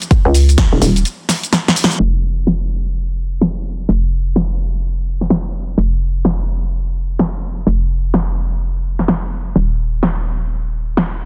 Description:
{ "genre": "bass house", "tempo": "127 BPM", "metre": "4/4", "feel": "swing 61% on 16ths", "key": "unclear", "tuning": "A4 = 439 Hz", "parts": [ { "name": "house drum kit", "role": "drums", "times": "0.0-11.1 s", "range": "hi-hat, shaker, snare drum", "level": "-20 LUFS", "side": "equal", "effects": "small room ambience" }, { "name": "electronic kick drum", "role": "drums", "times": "0.1-0.7 s", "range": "none", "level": "-14 LUFS", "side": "equal", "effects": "small room ambience" }, { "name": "hollow knocking FM bass", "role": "bass", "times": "0.3-11.3 s", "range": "Eb1 to Db2", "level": "-19 LUFS", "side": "equal", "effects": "tube saturation, sidechain pumping" } ], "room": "light reverb, digital ambience", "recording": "dense, heavily limited modern master, low-pass filter", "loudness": "-17 LUFS", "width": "mono", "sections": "0.0-2.0 A section; 2.0-11.3 B section", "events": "drop 0.0-2.0; break 1.1-2.0; drum fill 1.5-2.0; band accent 1.8; filter sweep 2.0-11.3", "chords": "none", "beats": "| 0.11 0.58 1.05 1.53 | 2.00 2.47 2.94 3.42 | 3.89 4.36 4.83 5.30 | 5.78 6.25 6.72 7.20 | 7.67 8.14 8.61 9.09 | 9.56 10.03 10.50 10.97" }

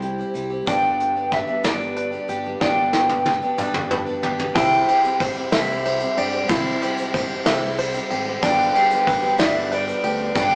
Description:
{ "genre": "indie folk with a building arrangement", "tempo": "62 BPM (dotted quarters)", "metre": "6/8", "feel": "straight", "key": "C major", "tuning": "A4 = 440 Hz", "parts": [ { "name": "fingerpicked old ladder-braced acoustic guitar", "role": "accompaniment", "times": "0.0-2.6 s", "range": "C3 to G4", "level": "-33 LUFS", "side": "equal", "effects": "none" }, { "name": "picked twelve-string acoustic guitar", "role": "accompaniment", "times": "0.0-10.6 s", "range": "G2 to G4", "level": "-32 LUFS", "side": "equal", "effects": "none" }, { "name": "fingered electric bass", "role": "bass", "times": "0.0-10.6 s", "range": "G1 to G2", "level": "-36 LUFS", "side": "equal", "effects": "none" }, { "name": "soft brush drum kit", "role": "drums", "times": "0.0-10.5 s", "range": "hi-hat, kick drum, ride cymbal, snare drum, toms", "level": "-27 LUFS", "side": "equal", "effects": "none" }, { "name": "tube shaker", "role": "percussion", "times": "0.2-10.5 s", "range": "none", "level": "-52 LUFS", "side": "equal", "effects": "none" }, { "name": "electric guitar through a small old amp", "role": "melody", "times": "0.7-10.6 s", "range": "C5 to G5", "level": "-24 LUFS", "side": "equal", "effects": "tremolo" }, { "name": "clear baby grand piano", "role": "accompaniment", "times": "0.7-10.6 s", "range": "G1 to E5", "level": "-33 LUFS", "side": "equal", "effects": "none" }, { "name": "open-back banjo", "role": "arpeggios", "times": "0.7-10.6 s", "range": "D4 to E5", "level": "-29 LUFS", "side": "equal", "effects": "none" } ], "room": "wet stone room reverb, RT60 1.1 s", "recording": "rough rehearsal-room recording, small speaker sound", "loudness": "-21 LUFS", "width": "mono", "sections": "0.0-4.6 A section; 4.6-10.6 B section", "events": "drum fill 2.6-4.6", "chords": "0.0 C; 0.7 G; 4.6 C; 8.4 G", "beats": "| 0.68 1.65 | 2.62 3.59 | 4.56 5.52 | 6.49 7.46 | 8.42 9.39 | 10.36" }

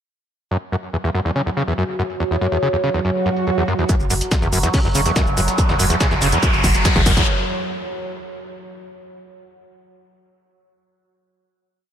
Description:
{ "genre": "driving peak-time techno", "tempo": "142 BPM", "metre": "4/4", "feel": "straight", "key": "unclear", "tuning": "A4 = 440 Hz", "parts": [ { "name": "screaming distorted acid line", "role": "riff", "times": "0.5-7.2 s", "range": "E2 to C#3", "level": "-21 LUFS", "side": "equal", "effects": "distortion, analog chorus, vintage 12-bit sampler grit, sidechain pumping, tape echo" }, { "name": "overtone-sweeping drone", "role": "drone", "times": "1.1-7.3 s", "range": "F#3", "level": "-24 LUFS", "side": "right 2 dB", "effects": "chorus, built-in reverb, sidechain pumping" }, { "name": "electronic hi-hat and shaker", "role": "drums", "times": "0.5-7.3 s", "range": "none", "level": "-25 LUFS", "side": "right 1 dB", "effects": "sidechain pumping on hats, low-pass filter on hats, sidechain pumping on perc, low-pass filter on perc, low-pass filter on room" }, { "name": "swell and riser", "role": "sound effects", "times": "3.2-7.3 s", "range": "none", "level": "-24 LUFS", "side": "equal", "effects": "none" }, { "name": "dusty soul sampler-style drum kit", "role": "drums", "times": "3.9-7.2 s", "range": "hi-hat, shaker, snare drum", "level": "-29 LUFS", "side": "right 1 dB", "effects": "high-pass filter on perc, high-pass filter on hats, high-pass filter on snare, high-pass filter on room" }, { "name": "electronic kick drum", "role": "drums", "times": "3.9-7.3 s", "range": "none", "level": "-19 LUFS", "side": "equal", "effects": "none" }, { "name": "warm sub bass", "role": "bass", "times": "4.0-7.2 s", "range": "F#1", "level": "-23 LUFS", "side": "equal", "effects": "overdrive, sidechain pumping, low-pass filter" } ], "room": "light reverb, digital ambience", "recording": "none", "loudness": "-16 LUFS", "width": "side -9 dB against mid", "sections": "0.5-3.9 intro; 3.9-7.3 build", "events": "swell 3.2-3.9; build-up 3.9-7.3; riser 3.9-7.3; drum fill 5.6-7.3", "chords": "0.5 F#5", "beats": "| 0.51 0.94 1.36 1.78 | 2.20 2.62 3.05 3.47 | 3.89 4.32 4.74 5.16 | 5.58 6.00 6.43 6.85" }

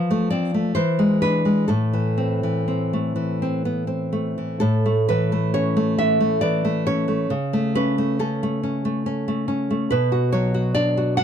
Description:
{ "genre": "romantic piece for solo classical guitar", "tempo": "61-72 BPM", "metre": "3/4", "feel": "rubato", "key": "A minor, A major from 4.6 s", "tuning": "A4 = 440 Hz", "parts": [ { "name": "nylon-string guitar", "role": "solo", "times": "0.0-11.2 s", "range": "A2 to F#5", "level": "-19 LUFS", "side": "equal", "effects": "none" } ], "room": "little or no reverb", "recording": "dark, warm production", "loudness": "-19 LUFS", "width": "side -8 dB against mid", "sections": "0.0-4.6 A section; 4.6-11.2 B section", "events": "none", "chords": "0.0 F; 0.8 E7; 1.7 Am; 4.6 A; 7.3 A/C#; 9.9 Bm", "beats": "0.75 | 1.69 2.68 3.65 | 4.62 5.54 6.43 | 7.32 8.22 9.08 | 9.92 10.76" }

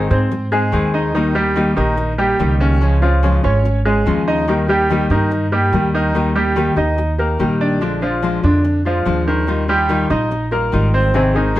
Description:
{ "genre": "latin", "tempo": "144 BPM", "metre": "4/4", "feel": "straight", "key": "unclear", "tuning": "A4 = 440 Hz", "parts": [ { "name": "nylon-string guitar", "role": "accompaniment", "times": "0.0-11.6 s", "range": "Db3 to Ab4", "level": "-19 LUFS", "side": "left 3 dB", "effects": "none" }, { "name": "bright baby grand piano", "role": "arpeggios", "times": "0.0-11.6 s", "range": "C3 to Eb5", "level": "-18 LUFS", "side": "right 1 dB", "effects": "none" }, { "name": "upright bass", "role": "bass", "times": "0.0-11.6 s", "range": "Ab1 to Ab2", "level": "-19 LUFS", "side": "right 1 dB", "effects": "none" } ], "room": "light reverb", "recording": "none", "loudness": "-14 LUFS", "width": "side -15 dB against mid", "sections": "0.0-11.6 A section", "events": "none", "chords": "0.0 Ab; 1.1 Eb; 2.8 Db; 4.5 Eb; 7.8 Bb7; 9.5 Ebadd9", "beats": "0.32 0.73 | 1.15 1.56 1.98 2.40 | 2.81 3.23 3.65 4.06 | 4.48 4.89 5.31 5.73 | 6.14 6.56 6.98 7.40 | 7.81 8.23 8.65 9.06 | 9.48 9.90 10.31 10.73 | 11.15 11.56" }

